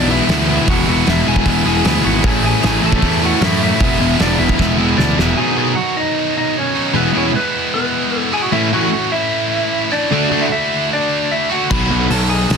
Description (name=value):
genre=punk rock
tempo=152 BPM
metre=4/4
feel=straight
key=E mixolydian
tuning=A4 = 440 Hz
part: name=lightly driven lead guitar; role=melody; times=0.0-12.6 s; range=B3 to B5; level=-20 LUFS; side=equal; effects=none
part: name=cranked stack guitar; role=riff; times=0.0-12.1 s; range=A2 to F#4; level=-19 LUFS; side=right 15 dB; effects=overdrive
part: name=high-gain distorted guitar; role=riff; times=0.0-12.6 s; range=A2 to F#4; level=-20 LUFS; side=right 1 dB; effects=distortion
part: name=sludgy distorted guitar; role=riff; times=0.0-12.1 s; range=E2 to D4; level=-18 LUFS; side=left 13 dB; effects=overdrive
part: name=fuzz picked electric bass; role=bass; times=0.0-5.3, 11.7-12.6 s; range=E1 to F#2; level=-19 LUFS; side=equal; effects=overdrive
part: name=loose indie drum kit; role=drums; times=0.3-5.3, 11.7-12.6 s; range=crash cymbal, hi-hat, kick drum, snare drum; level=-19 LUFS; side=equal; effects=none
room=light reverb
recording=dense, heavily limited modern master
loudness=-13 LUFS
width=side -6 dB against mid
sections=0.0-5.4 A section; 5.4-12.6 B section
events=drum fill 4.6-5.4; half time 5.4-12.6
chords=0.0 E; 2.2 A; 3.8 E; 5.4 B; 7.0 E; 8.5 A; 10.1 D; 11.7 B